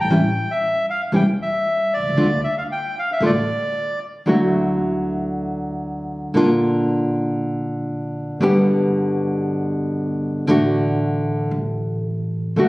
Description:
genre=tango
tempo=116 BPM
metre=4/4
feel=rubato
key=D minor, D major from 4.3 s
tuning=A4 = 440 Hz
part: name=bandoneon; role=melody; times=0.0-4.0 s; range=D5 to G5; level=-21 LUFS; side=equal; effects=none
part: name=upright bass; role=bass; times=0.0-12.7 s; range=E1 to D2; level=-27 LUFS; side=equal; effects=none
part: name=nylon-string guitar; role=accompaniment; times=0.1-12.7 s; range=B2 to G4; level=-19 LUFS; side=equal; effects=none
room=moderate scoring stage reverb, RT60 1.8 s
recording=recorded on a phone in the room, club reverb, compression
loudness=-18 LUFS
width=side -20 dB against mid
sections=0.0-4.3 A section; 4.3-12.7 B section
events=none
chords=0.1 A7; 2.2 D5; 4.3 Dadd9; 6.4 Bb; 8.4 G; 10.5 D/A; 11.5 N.C.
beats=| 0.11 0.62 1.14 1.65 | 2.17 2.69 3.22 3.75 | 4.28 4.80 5.32 5.84 | 6.35 6.87 7.38 7.90 | 8.41 8.93 9.44 9.96 | 10.48 11.00 11.52 12.04 | 12.57

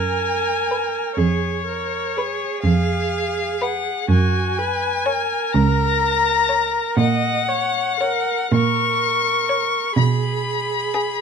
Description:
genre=classical, slow romantic movement for string quartet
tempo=41 BPM (dotted quarters)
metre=6/8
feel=rubato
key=F# major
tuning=A4 = 437 Hz
part: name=rich violin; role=melody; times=0.0-11.2 s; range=C#5 to C#6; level=-21 LUFS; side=left 7 dB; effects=none
part: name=rich viola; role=accompaniment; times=0.0-11.2 s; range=F#4 to D#5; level=-25 LUFS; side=right 6 dB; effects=none
part: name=rich cello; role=bass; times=0.0-11.2 s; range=C#2 to B2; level=-20 LUFS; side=right 3 dB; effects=none
part: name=warm violin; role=second line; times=0.7-11.2 s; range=G#4 to C#5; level=-25 LUFS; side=left 1 dB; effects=none
room=light reverb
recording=dark, warm production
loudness=-18 LUFS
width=side -6 dB against mid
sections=0.0-11.2 A section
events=none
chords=0.0 G#m7/F#; 1.2 C#7/E#; 4.1 F#; 7.0 F#/A#; 10.0 G#m/B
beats=| 1.19 2.65 | 4.10 5.54 | 6.97 8.52 | 9.97

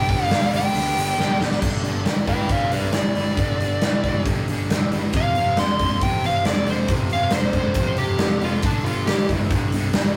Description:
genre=classic rock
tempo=137 BPM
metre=4/4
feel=straight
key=G mixolydian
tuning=A4 = 437 Hz
part: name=fuzz lead guitar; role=melody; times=0.0-9.3 s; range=D4 to C6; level=-26 LUFS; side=equal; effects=distortion
part: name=distorted electric guitar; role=riff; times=0.0-10.1 s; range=F2 to D4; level=-30 LUFS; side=equal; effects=overdrive
part: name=overdriven electric guitar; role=riff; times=0.0-10.2 s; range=F2 to G4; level=-35 LUFS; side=equal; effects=none
part: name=fuzz picked electric bass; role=bass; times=0.0-10.1 s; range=F1 to D2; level=-32 LUFS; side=equal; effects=overdrive
part: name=big rock drum kit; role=drums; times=0.1-10.0 s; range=crash cymbal, hi-hat, kick drum, snare drum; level=-24 LUFS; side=equal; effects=none
room=moderate studio reverb, RT60 0.6 s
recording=rough rehearsal-room recording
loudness=-21 LUFS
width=mono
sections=0.0-1.6 A section; 1.6-10.2 B section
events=drum fill 1.2-1.6; lead electric guitar solo 1.6-10.2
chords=0.0 G; 1.6 G5; 5.1 F5; 8.6 G5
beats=0.31 0.75 1.19 | 1.63 2.07 2.51 2.95 | 3.39 3.83 4.27 4.71 | 5.14 5.58 6.02 6.46 | 6.90 7.33 7.77 8.21 | 8.64 9.08 9.51 9.95

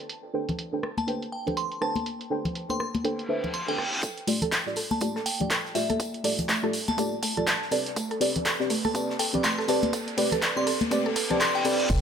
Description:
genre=deep house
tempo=122 BPM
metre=4/4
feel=swing 59% on 16ths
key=A minor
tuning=A4 = 440 Hz
part: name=deep mellow chord stab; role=stabs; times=0.0-11.9 s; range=A3 to G5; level=-29 LUFS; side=equal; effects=chorus, sidechain pumping, dub echo
part: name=punchy analog drum machine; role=drums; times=0.0-12.0 s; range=crash cymbal, handclaps, hi-hat, rim click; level=-29 LUFS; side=right 1 dB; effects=low-pass filter on hats, low-pass filter on snare, low-pass filter on cymbals
part: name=congas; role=percussion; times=0.5-11.4 s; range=none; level=-32 LUFS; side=left 2 dB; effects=sidechain pumping on perc
part: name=glassy synth bell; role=melody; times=1.0-11.9 s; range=E5 to C6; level=-34 LUFS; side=left 1 dB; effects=chorus, phaser, dub echo
part: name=reverse cymbal and riser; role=sound effects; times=3.3-11.9 s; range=none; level=-36 LUFS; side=left 1 dB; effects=none
part: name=mallet-like synth pluck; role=arpeggios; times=4.0-12.0 s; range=A3 to A5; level=-33 LUFS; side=right 2 dB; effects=chorus, sidechain pumping, dub echo
part: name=electronic kick drum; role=drums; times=4.0-12.0 s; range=none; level=-32 LUFS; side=equal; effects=high-pass filter on kick
part: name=loose indie drum kit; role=drums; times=4.0-12.0 s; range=hi-hat, snare drum, tambourine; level=-40 LUFS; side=right 1 dB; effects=high-pass filter on hats, high-pass filter on snare, high-pass filter on perc, high-pass filter on room
part: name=round analog bass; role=bass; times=11.9-12.0 s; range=F1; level=-25 LUFS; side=equal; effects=sidechain pumping
room=moderate digital room reverb, RT60 1.1 s, small room ambience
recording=none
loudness=-24 LUFS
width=side -7 dB against mid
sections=0.0-4.0 A section; 4.0-11.9 B section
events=filter sweep 0.0-4.0; reverse cymbal 3.3-4.0, 10.9-11.9; build-up 4.0-11.9; riser 4.0-11.9; filter sweep on synth stab 4.0-11.9; filter sweep on synth arpeggio sound 4.0-11.9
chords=0.0 Am11; 4.0 F69; 7.7 Am11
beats=| 0.10 0.59 1.08 1.57 | 2.06 2.56 3.05 3.54 | 4.03 4.52 5.01 5.50 | 6.00 6.49 6.98 7.47 | 7.96 8.46 8.95 9.44 | 9.93 10.42 10.91 11.41 | 11.90

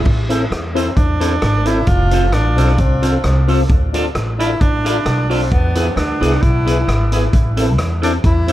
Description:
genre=ska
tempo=132 BPM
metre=4/4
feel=swing 54% on 8ths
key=A harmonic minor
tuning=A4 = 445 Hz
part: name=upright bass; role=bass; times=0.1-8.5 s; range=F1 to E2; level=-17 LUFS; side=equal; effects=none
part: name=vintage drum kit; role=drums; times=0.1-8.5 s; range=crash cymbal, hi-hat, kick drum, rim click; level=-19 LUFS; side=equal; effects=none
part: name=clean electric guitar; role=accompaniment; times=0.3-8.5 s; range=E4 to D5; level=-24 LUFS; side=right 3 dB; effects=none
part: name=mellow tonewheel organ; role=stabs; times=0.3-8.5 s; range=B3 to A4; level=-23 LUFS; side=left 3 dB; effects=chorus vibrato, slow rotary speaker, dub echo
part: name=breathy tenor saxophone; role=melody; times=0.8-8.5 s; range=B3 to F4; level=-20 LUFS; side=right 1 dB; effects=dub echo
room=light reverb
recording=dark, warm production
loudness=-13 LUFS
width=side -14 dB against mid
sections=0.1-8.5 A section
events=none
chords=0.1 Am; 1.9 F; 3.7 Dm; 5.5 E; 7.3 Am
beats=| 0.06 0.51 0.97 1.42 | 1.88 2.33 2.79 3.24 | 3.69 4.15 4.60 5.06 | 5.51 5.96 6.42 6.87 | 7.33 7.78 8.23

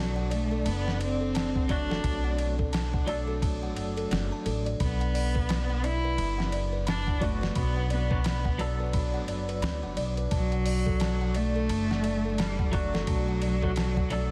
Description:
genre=trip hop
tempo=87 BPM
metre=4/4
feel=swing 60% on 16ths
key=B minor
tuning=A4 = 440 Hz
part: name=rich cello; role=melody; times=0.0-14.3 s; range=F#3 to E4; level=-35 LUFS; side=equal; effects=tape echo
part: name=deep dark ambient pad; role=sustained chords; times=0.0-14.3 s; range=D5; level=-42 LUFS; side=equal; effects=chorus, built-in reverb
part: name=music box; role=arpeggios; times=0.0-14.2 s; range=A4 to B5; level=-39 LUFS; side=equal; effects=delay
part: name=upright bass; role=bass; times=0.0-14.3 s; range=F#1 to D2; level=-32 LUFS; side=equal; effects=none
part: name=dusty soul sampler-style drum kit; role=drums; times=0.3-14.3 s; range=hi-hat, kick drum, ride cymbal, snare drum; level=-34 LUFS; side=equal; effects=none
part: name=clean electric guitar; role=accompaniment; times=1.7-14.3 s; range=F#3 to A4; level=-39 LUFS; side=equal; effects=tremolo, tape echo
room=little or no reverb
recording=dense, heavily limited modern master, vinyl crackle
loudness=-28 LUFS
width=mono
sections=0.0-14.3 A section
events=none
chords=0.0 Bm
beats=0.66 1.35 | 2.04 2.73 3.42 4.11 | 4.80 5.49 6.18 6.87 | 7.56 8.25 8.94 9.63 | 10.31 11.01 11.70 12.38 | 13.07 13.76

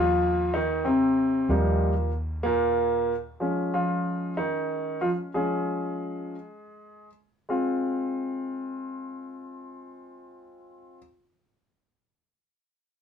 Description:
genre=pop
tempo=53-63 BPM (dotted quarters)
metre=6/8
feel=straight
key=Ab major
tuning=A4 = 445 Hz
part: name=clear concert grand piano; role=accompaniment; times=0.0-11.0 s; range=Bb2 to Ab4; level=-25 LUFS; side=equal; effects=none
part: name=vintage muted fingered electric bass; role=bass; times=0.0-3.4 s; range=Eb2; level=-29 LUFS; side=equal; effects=none
room=wet small room reverb, RT60 0.5 s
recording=rough rehearsal-room recording, warm saturation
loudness=-24 LUFS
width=side -7 dB against mid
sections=0.0-7.5 A section; 7.5-12.1 B section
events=grand piano solo 0.0-7.5; slowing down 3.4-7.5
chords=0.0 Ebadd9; 3.4 Db; 7.5 Ab6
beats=0.55 | 1.50 2.45 | 3.40 4.36 | 5.35 6.38 | 7.49 8.63 | 9.77 10.91

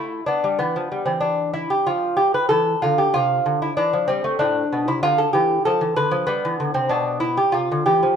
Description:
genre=classical, baroque-style dance for lute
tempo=95 BPM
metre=3/4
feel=rubato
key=C major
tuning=A4 = 441 Hz
part: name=lute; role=solo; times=0.0-8.2 s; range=A2 to B4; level=-18 LUFS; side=equal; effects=none
room=moderate large studio reverb, RT60 1.3 s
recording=band playing live in one room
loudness=-18 LUFS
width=side -7 dB against mid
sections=0.0-8.2 A section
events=none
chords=0.0 G; 0.6 Em7; 1.9 N.C.; 2.5 C; 4.4 Am; 5.7 Dm; 6.3 G; 7.6 C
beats=| 0.60 1.23 1.88 | 2.52 3.16 3.79 | 4.42 5.04 5.67 | 6.29 6.92 7.55

